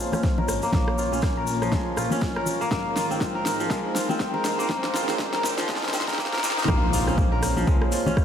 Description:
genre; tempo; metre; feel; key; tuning
afro house; 121 BPM; 4/4; swing 58% on 16ths; Bb minor; A4 = 440 Hz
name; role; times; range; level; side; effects
dark analog pad; sustained chords; 0.0-8.2 s; Ab3 to Db5; -30 LUFS; equal; chorus, sidechain pumping
kora; arpeggios; 0.0-8.2 s; F3 to Bb4; -27 LUFS; left 1 dB; vintage 12-bit sampler grit, sidechain pumping, low-pass filter, tape echo
riser and impact; sound effects; 0.0-8.2 s; none; -36 LUFS; equal; none
deep house drum kit; drums; 0.1-8.2 s; hi-hat, rim click, snare drum; -30 LUFS; equal; overdrive
congas; percussion; 0.1-8.1 s; none; -32 LUFS; left 3 dB; none
tube shaker; percussion; 0.1-8.2 s; none; -36 LUFS; left 4 dB; none
electronic kick drum; drums; 0.2-8.2 s; none; -25 LUFS; equal; overdrive
dark detuned saw bass; bass; 0.5-7.8 s; Eb1 to Eb2; -32 LUFS; equal; sidechain pumping
room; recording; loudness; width
wet huge ambient reverb, RT60 4.4 s; dreamy mix soaked in reverb, high-pass filter; -22 LUFS; side -9 dB against mid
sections
0.0-6.7 A section; 6.7-8.2 B section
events
build-up 0.0-6.7; drum fill 0.0-6.7; filter sweep on kora 0.0-6.7; filter sweep 0.0-6.7; drop 6.7-8.2; impact 6.7-8.2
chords
0.0 Bbm7; 2.7 Ab6; 6.7 Bbm7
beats
0.24 | 0.73 1.23 1.72 2.22 | 2.71 3.21 3.71 4.20 | 4.70 5.19 5.69 6.19 | 6.68 7.18 7.67 8.17

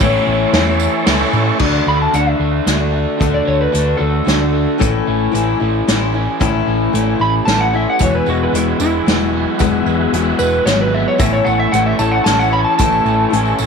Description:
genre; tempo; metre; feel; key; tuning
folk rock and heartland rock; 113 BPM; 3/4; straight; A major; A4 = 440 Hz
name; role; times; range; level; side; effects
electric slide guitar; melody; 0.0-13.7 s; E4 to B5; -18 LUFS; equal; none
picked steel-string acoustic guitar; accompaniment; 0.0-13.7 s; E2 to F#4; -18 LUFS; left 12 dB; none
tonewheel organ; sustained chords; 0.0-1.6, 8.0-13.7 s; C#4 to C#5; -24 LUFS; right 1 dB; slow rotary speaker, chorus vibrato
crunchy overdriven guitar; riff; 0.0-13.7 s; E2 to E4; -21 LUFS; right 13 dB; none
fingered electric bass; bass; 0.0-13.7 s; E1 to A2; -19 LUFS; right 1 dB; none
unplugged drum kit; drums; 0.0-13.4 s; crash cymbal, hi-hat, kick drum, ride cymbal, snare drum; -18 LUFS; right 1 dB; none
tambourine; percussion; 0.0-1.4, 8.0-13.7 s; none; -32 LUFS; right 16 dB; none
room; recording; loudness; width
light reverb, studio ambience; 1960s-style stereo with parts hard left and right; -13 LUFS; side -6 dB against mid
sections
0.0-1.6 A section; 1.6-13.7 B section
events
electric slide guitar solo 1.6-13.7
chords
0.0 A; 1.6 D; 4.8 A; 8.0 Eadd9; 11.2 A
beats
| 0.01 0.54 1.08 | 1.61 2.14 2.67 | 3.21 3.74 4.28 | 4.81 5.34 5.88 | 6.41 6.94 7.47 | 8.01 8.54 9.07 | 9.60 10.13 10.66 | 11.20 11.73 12.26 | 12.79 13.32

